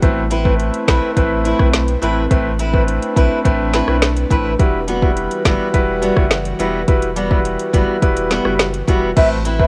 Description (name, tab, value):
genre	dancehall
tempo	105 BPM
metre	4/4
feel	straight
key	A dorian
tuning	A4 = 439 Hz
part	clear concert grand piano	accompaniment	0.0-9.7 s	G3 to B4	-22 LUFS	equal	none
part	airy breathy pad	sustained chords	0.1-9.7 s	E3 to B4	-28 LUFS	equal	chorus, sidechain pumping
part	saturated sub bass	bass	0.0-9.7 s	E1 to B1	-24 LUFS	equal	none
part	afro-pop drum kit	drums	0.0-9.7 s	crash cymbal, hi-hat, kick drum, rim click, snare drum	-19 LUFS	equal	none
part	picked steel-string acoustic guitar	arpeggios	0.3-9.7 s	G3 to B4	-25 LUFS	equal	tape echo
part	mellow baroque flute	melody	9.2-9.7 s	E5	-17 LUFS	equal	tape echo
room	small room reverb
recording	home recording on cassette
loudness	-16 LUFS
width	mono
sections	0.0-9.2 A section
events	none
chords	0.0 Amadd9; 4.6 Emadd9; 9.2 Amadd9